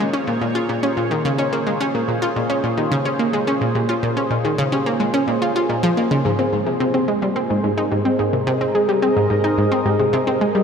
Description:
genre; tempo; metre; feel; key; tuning
ambient, sequencer-driven space music; 108 BPM; 4/4; straight; unclear; A4 = 440 Hz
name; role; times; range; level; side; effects
sweeping resonant pad; sustained chords; 0.0-10.6 s; Ab3 to Eb5; -23 LUFS; equal; chorus, shimmer reverb
soft round pluck; arpeggios; 0.0-10.6 s; Eb4 to Ab5; -28 LUFS; left 2 dB; none
analog pluck; riff; 0.0-10.6 s; Ab2 to F4; -19 LUFS; equal; chorus, analog delay, shimmer reverb
room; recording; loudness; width
wet cathedral reverb, RT60 6.3 s; in a vast, echoing space; -17 LUFS; side -6 dB against mid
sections
0.0-10.6 A section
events
fade-in on analog synth pad 0.0-10.6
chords
0.0 Bbm7; 6.2 Abadd9

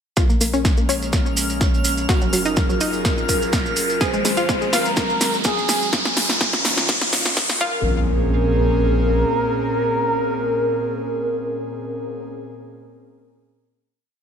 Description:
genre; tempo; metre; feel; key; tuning
progressive house; 125 BPM; 4/4; straight; Bb minor; A4 = 439 Hz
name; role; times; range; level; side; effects
expressive synth lead; melody; 0.2-12.3 s; Ab4 to Db5; -24 LUFS; equal; analog chorus, ping-pong delay
airy breathy pad; sustained chords; 0.2-12.3 s; Bb2 to Bb4; -26 LUFS; equal; chorus, sidechain pumping
analog pluck; arpeggios; 0.2-12.3 s; Gb3 to Ab4; -24 LUFS; left 1 dB; chorus, sidechain pumping, ping-pong delay
saturated sub bass; bass; 0.2-9.2 s; Gb1 to Bb1; -25 LUFS; equal; sidechain pumping
big-room dance drum kit; drums; 0.2-7.6 s; hi-hat, snare drum; -24 LUFS; equal; none
electronic kick drum; drums; 0.2-7.7 s; none; -21 LUFS; equal; none
maracas; percussion; 0.2-5.9 s; none; -27 LUFS; right 3 dB; none
riser and impact; sound effects; 2.1-12.3 s; none; -25 LUFS; equal; none
twinkling granular texture; texture; 0.9-5.9 s; F6; -31 LUFS; right 1 dB; built-in reverb, sidechain pumping
room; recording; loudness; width
moderate digital room reverb, RT60 1.1 s; high-pass filter; -17 LUFS; side -7 dB against mid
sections
0.2-7.8 build; 7.8-11.7 final hit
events
build-up 0.2-7.8; drum fill 0.2-7.8; filter sweep on synth pluck 0.2-5.9; filter sweep on analog synth lead 0.2-5.9; filter sweep 0.2-7.8; riser 2.1-7.8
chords
0.2 Bbm7; 2.1 Gbmaj7; 4.0 Ab7; 5.9 Ebm7; 7.6 Bbm7

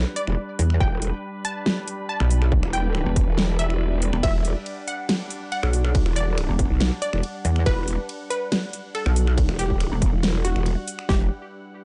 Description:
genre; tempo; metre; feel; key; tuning
heavy wobble dubstep; 140 BPM; 4/4; half-time; E minor; A4 = 439 Hz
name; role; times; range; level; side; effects
unison pluck; melody; 0.0-11.3 s; F#4 to A5; -33 LUFS; equal; dub echo
evolving wavetable pad; sustained chords; 0.0-11.3 s; G3 to F#5; -38 LUFS; equal; phaser, built-in reverb, sidechain pumping
growl bass; bass; 0.0-11.3 s; E1 to B1; -26 LUFS; equal; chorus, overdrive
dubstep drum kit; drums; 0.2-11.1 s; finger snaps, hi-hat, ride cymbal, snare drum; -30 LUFS; equal; none
pulsing pluck wobble bass; bass; 0.6-10.1 s; E1 to E2; -22 LUFS; equal; chorus, overdrive
dubstep drum kit; drums; 0.8-11.2 s; kick drum, snare drum; -24 LUFS; equal; distortion
room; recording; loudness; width
little or no reverb; dark, warm production, nothing above 10.3 kHz; -23 LUFS; mono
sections
0.0-11.1 A section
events
drop 0.0-11.1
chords
0.0 Em

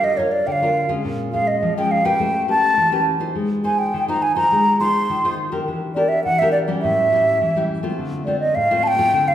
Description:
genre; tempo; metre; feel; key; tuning
samba; 104 BPM; 4/4; straight; unclear; A4 = 436 Hz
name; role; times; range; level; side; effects
hollow wooden flute; melody; 0.0-9.3 s; C#5 to C6; -18 LUFS; right 1 dB; none
nylon-string guitar; accompaniment; 0.0-9.3 s; A2 to C5; -23 LUFS; left 2 dB; none
room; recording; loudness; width
wet recital hall reverb, RT60 1.5 s; recorded in a church or concert hall; -16 LUFS; side -11 dB against mid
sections
0.0-9.3 A section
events
none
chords
0.0 Gm7; 1.1 Bbm7; 2.2 A9; 3.4 Ab6; 5.7 Em7b5; 6.8 A7; 8.0 Dm7

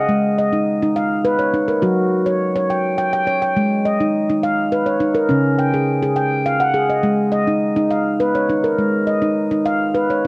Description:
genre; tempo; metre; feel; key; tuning
world meditative, meditative tuned percussion; 104 BPM; 3/4; straight; G# dorian; A4 = 440 Hz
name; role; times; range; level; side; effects
handpan; solo; 0.0-10.3 s; C#3 to G5; -15 LUFS; equal; none
room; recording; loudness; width
light reverb; none; -15 LUFS; side -25 dB against mid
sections
0.0-10.3 A section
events
none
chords
0.1 G#m; 1.8 F#5; 3.6 G#m; 5.3 C#; 7.0 G#m

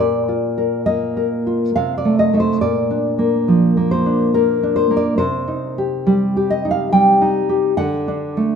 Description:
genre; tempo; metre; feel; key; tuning
romantic piece for solo classical guitar; 69 BPM; 3/4; rubato; unclear; A4 = 440 Hz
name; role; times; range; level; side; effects
nylon-string guitar; solo; 0.0-8.6 s; Bb2 to G5; -15 LUFS; equal; none
room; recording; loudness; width
moderate concert hall reverb, RT60 2.2 s; minimal, uncompressed stereo recording; -15 LUFS; side -7 dB against mid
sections
0.0-8.6 A section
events
none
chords
0.0 Bb; 1.8 Cm69; 2.6 Bb; 5.2 Cm; 7.8 D

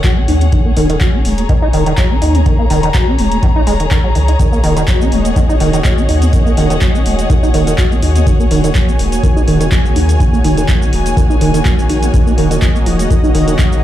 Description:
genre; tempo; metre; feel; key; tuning
acid house; 124 BPM; 4/4; swing 54% on 16ths; Eb minor; A4 = 440 Hz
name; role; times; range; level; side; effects
deep acid bass; riff; 0.0-13.8 s; Eb3 to Eb4; -16 LUFS; right 1 dB; tube saturation, wide subtle chorus, digital delay
booming analog drum machine; drums; 0.0-13.8 s; handclaps, hi-hat, shaker; -24 LUFS; equal; none
electronic kick drum; drums; 0.0-13.7 s; none; -13 LUFS; equal; none
dark chamber string section; texture; 0.0-13.8 s; Ab4 to Bb5; -22 LUFS; left 2 dB; sidechain pumping
saturated sub bass; bass; 0.3-13.6 s; Eb1 to Eb2; -15 LUFS; equal; tube saturation, sidechain pumping
warm analog pad; sustained chords; 4.4-13.8 s; Eb3 to Ab5; -20 LUFS; right 1 dB; chorus, sidechain pumping
room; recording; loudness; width
little or no reverb; played on a big sound system in a bare room, large studio reverb; -10 LUFS; side -12 dB against mid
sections
0.0-13.8 A section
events
filter sweep on acid bass 0.0-13.8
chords
0.0 Ebm

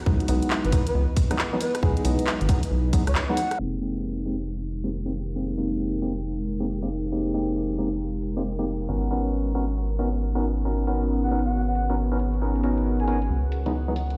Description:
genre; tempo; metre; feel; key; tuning
UK garage, two-step garage; 136 BPM; 4/4; swing 64% on 16ths; unclear; A4 = 440 Hz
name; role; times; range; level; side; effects
ethereal airy pad; sustained chords; 0.0-14.2 s; Fb3 to Cb5; -39 LUFS; equal; none
deep dark ambient pad; texture; 0.0-14.2 s; Fb3 to G5; -36 LUFS; equal; chorus, built-in reverb, sidechain pumping
percussive organ stab; stabs; 0.1-13.9 s; Fb3 to Bb4; -30 LUFS; equal; lush chorus, tape echo
rubbery square bass; bass; 0.1-14.2 s; F1 to Db2; -29 LUFS; equal; sidechain pumping
electronic kick drum; drums; 0.1-3.0 s; none; -25 LUFS; equal; studio reverb
garage drum kit; drums; 0.2-14.2 s; handclaps, hi-hat, rim click; -32 LUFS; equal; studio reverb
breathy flute-like synth lead; melody; 0.6-3.6, 11.2-13.2 s; Ab4 to Ab5; -32 LUFS; equal; analog chorus, tape echo
room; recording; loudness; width
moderate small room reverb, RT60 0.6 s; played on a big sound system in a bare room, stone room reverb, vinyl crackle, low-pass filter; -25 LUFS; mono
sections
0.0-3.6 A section; 3.6-14.2 B section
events
band accent 3.2; filter sweep 3.6-14.2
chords
0.0 Dbm11 (rootless); 3.6 Fm11; 8.9 Abm11; 13.3 Dbm11

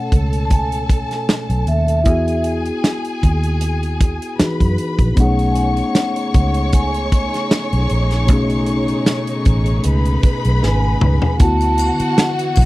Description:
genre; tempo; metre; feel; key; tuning
lush 1970s-style soul; 77 BPM; 4/4; swing 54% on 16ths; unclear; A4 = 441 Hz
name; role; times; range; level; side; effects
vibraphone with soft mallets; melody; 0.0-12.7 s; E5 to A5; -24 LUFS; equal; none
warm studio string section; second line; 0.0-12.7 s; F#4 to C#6; -26 LUFS; equal; none
mellow tine electric piano; accompaniment; 0.0-12.7 s; B2 to C#5; -22 LUFS; left 2 dB; none
vintage muted fingered electric bass; bass; 0.1-12.7 s; G#1 to F#2; -18 LUFS; equal; tube saturation
modern studio drum kit; drums; 0.1-12.7 s; hi-hat, kick drum, snare drum, toms; -16 LUFS; equal; none
warm studio string section; sustained chords; 5.2-12.7 s; C#3 to G#4; -29 LUFS; equal; none
triangle; percussion; 11.4-12.7 s; none; -34 LUFS; left 10 dB; none
room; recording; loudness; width
little or no reverb; dry, close 1970s-style studio recording; -14 LUFS; side -18 dB against mid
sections
0.0-11.4 A section; 11.4-12.7 B section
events
drum fill 10.6-11.4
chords
0.0 B13; 2.1 Emaj9; 5.2 B13; 11.4 D69

